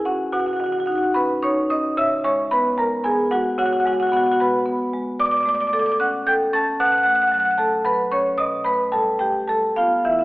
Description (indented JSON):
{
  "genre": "classical, contemporary piece for solo marimba",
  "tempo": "74 BPM (dotted quarters)",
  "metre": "6/8",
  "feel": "rubato",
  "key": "unclear",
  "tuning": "A4 = 440 Hz",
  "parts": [
    { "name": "marimba with medium hard mallets", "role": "solo", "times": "0.0-10.2 s", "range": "B2 to A6", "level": "-18 LUFS", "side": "equal", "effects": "none" }
  ],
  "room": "wet recital hall reverb, RT60 1.5 s",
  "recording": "recorded in a church or concert hall, telephone sound",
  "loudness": "-18 LUFS",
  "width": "side -19 dB against mid",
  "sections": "0.0-10.2 A section",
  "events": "none",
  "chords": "0.3 Badd9; 2.0 C#m7; 3.6 G#m7/C#; 5.2 Bm9; 6.8 A69/B; 8.4 Baug7"
}